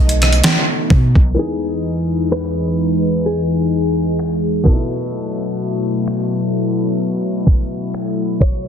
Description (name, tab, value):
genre	contemporary R&B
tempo	64 BPM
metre	4/4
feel	swing 54% on 16ths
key	E major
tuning	A4 = 441 Hz
part	direct-recorded clean electric guitar	melody	0.0-8.7 s	G#4 to D#5	-23 LUFS	equal	lush chorus, ping-pong delay
part	clear grand piano	accompaniment	0.0-8.7 s	B2 to B4	-26 LUFS	left 1 dB	none
part	chorused pulse-width pad	sustained chords	0.0-8.7 s	E2 to E4	-18 LUFS	left 1 dB	sidechain pumping
part	soft 808-style bass	bass	0.0-1.4 s	B1 to B2	-14 LUFS	equal	none
part	gated 80s digital drum machine	drums	0.1-8.6 s	finger snaps, hi-hat, kick drum, rim click, snare drum	-14 LUFS	equal	gated reverb, gated reverb snare, overdrive
room	light reverb, digital ambience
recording	dense, heavily limited modern master, low-pass filter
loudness	-15 LUFS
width	side -8 dB against mid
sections	0.0-1.4 A section; 1.4-8.7 B section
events	filter sweep 1.4-8.7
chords	0.0 B7; 1.4 Emaj7; 4.7 B7sus4